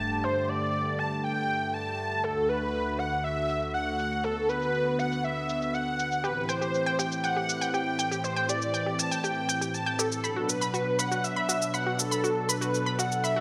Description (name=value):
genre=progressive house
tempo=120 BPM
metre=4/4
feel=straight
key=A dorian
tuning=A4 = 440 Hz
part: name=unison lead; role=melody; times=0.0-13.4 s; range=A4 to A5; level=-33 LUFS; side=equal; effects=subtle chorus, delay
part: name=airy dreamy lead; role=second line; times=0.0-13.4 s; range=A4 to A5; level=-37 LUFS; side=equal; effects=chorus
part: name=warm analog pad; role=sustained chords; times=0.0-13.4 s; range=D2 to B4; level=-34 LUFS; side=equal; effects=chorus
part: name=sub drop and reverse cymbal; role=sound effects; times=0.0-0.2, 13.2-13.4 s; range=none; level=-51 LUFS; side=equal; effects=none
part: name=cabasa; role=drums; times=0.1-13.3 s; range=none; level=-35 LUFS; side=equal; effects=low-pass filter on perc, low-pass filter on hats, low-pass filter on snare
part: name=analog pluck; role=arpeggios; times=6.2-13.4 s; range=F#4 to B5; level=-35 LUFS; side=equal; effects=chorus, delay
room=moderate digital room reverb, RT60 1.0 s, digital ambience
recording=none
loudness=-29 LUFS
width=mono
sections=0.0-13.4 A section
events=impact 0.0; filter sweep on drum 0.0-13.4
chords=0.0 Gsus2; 2.2 D; 6.2 Am7; 10.2 Bm